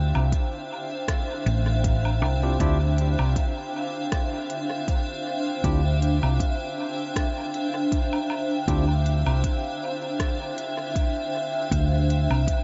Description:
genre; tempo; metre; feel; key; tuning
ambient dub; 79 BPM; 4/4; swing 55% on 16ths; D minor; A4 = 440 Hz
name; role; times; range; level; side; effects
granular cloud pad; sustained chords; 0.0-12.6 s; D4 to G5; -30 LUFS; equal; built-in reverb, lush chorus
hollow-body short-scale fingered electric bass; bass; 0.0-12.5 s; A1 to D2; -24 LUFS; equal; none
organic electronic drum kit; drums; 0.2-12.6 s; hi-hat, rim click, woodblock; -40 LUFS; equal; dub echo
electronic kick drum; drums; 0.3-12.6 s; none; -28 LUFS; equal; none
barky tine electric piano; stabs; 2.4-8.8 s; C4 to G4; -39 LUFS; equal; dub echo
room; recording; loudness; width
moderate huge ambient reverb, RT60 7.4 s; dreamy mix soaked in reverb, nothing above 7.6 kHz; -25 LUFS; mono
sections
0.0-12.6 A section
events
none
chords
0.0 Dm11

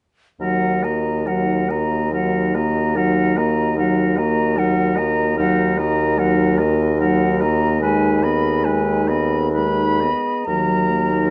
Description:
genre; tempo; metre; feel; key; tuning
classical, slow romantic movement for wind quintet; 61-76 BPM; 3/4; rubato; Eb minor; A4 = 436 Hz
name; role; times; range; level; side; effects
bright concert flute; melody; 0.4-11.3 s; Gb5 to Cb6; -26 LUFS; equal; none
warm oboe; second line; 0.4-11.3 s; Bb4 to Eb5; -28 LUFS; equal; none
mellow French horn; accompaniment; 0.4-11.3 s; Gb3 to Cb4; -25 LUFS; equal; none
warm clarinet; accompaniment; 0.4-11.3 s; Eb3 to Ab4; -29 LUFS; equal; none
warm bassoon; bass; 0.4-11.3 s; Eb2; -23 LUFS; equal; none
room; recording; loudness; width
moderate large studio reverb, RT60 1.5 s; dark, warm production, nothing above 10.8 kHz; -19 LUFS; mono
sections
0.4-10.5 A section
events
none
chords
0.4 Ebm; 7.8 Abm/Eb; 10.5 Ebm

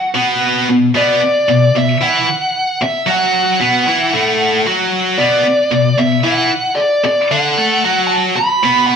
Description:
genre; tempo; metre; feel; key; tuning
rock; 113 BPM; 4/4; straight; B minor; A4 = 440 Hz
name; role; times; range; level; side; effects
bluesy overdriven lead guitar; melody; 0.0-9.0 s; D5 to B5; -15 LUFS; equal; distortion, slapback echo
tight distorted guitar; riff; 0.1-9.0 s; A2 to A4; -14 LUFS; equal; distortion
room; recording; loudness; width
wet stone room reverb, RT60 1.2 s; band playing live in one room; -11 LUFS; side -6 dB against mid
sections
0.0-9.0 A section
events
none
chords
0.0 Bm

